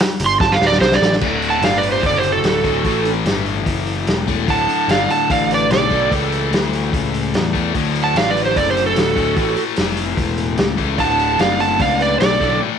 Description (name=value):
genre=blues rock power trio and southern rock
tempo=148 BPM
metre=4/4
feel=straight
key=D major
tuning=A4 = 441 Hz
part: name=vintage drum kit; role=drums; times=0.0-12.5 s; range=crash cymbal, hi-hat, kick drum, snare drum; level=-21 LUFS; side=equal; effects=none
part: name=fuzz picked electric bass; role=bass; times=0.2-12.6 s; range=D1 to E2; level=-22 LUFS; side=equal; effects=overdrive
part: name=overdriven slide guitar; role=melody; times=0.3-12.6 s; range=A4 to C6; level=-17 LUFS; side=right 4 dB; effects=none
part: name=overdriven electric guitar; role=riff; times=1.2-12.8 s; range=D2 to A3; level=-21 LUFS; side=left 12 dB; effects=none
part: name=bluesy overdriven lead guitar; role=second line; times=1.5-12.6 s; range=F#4 to F#5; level=-25 LUFS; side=right 9 dB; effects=distortion, slapback echo
room=moderate echo chamber reverb, RT60 1.2 s, small room reverb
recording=1960s-style stereo with parts hard left and right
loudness=-14 LUFS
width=side -7 dB against mid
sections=0.0-1.2 A section; 1.2-12.8 B section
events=electric slide guitar solo 0.0-1.2; drum fill 0.4-1.2; break 12.6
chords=0.0 D5; 1.2 D; 2.8 A5; 4.5 D; 6.1 A; 7.7 D; 9.4 A; 11.0 D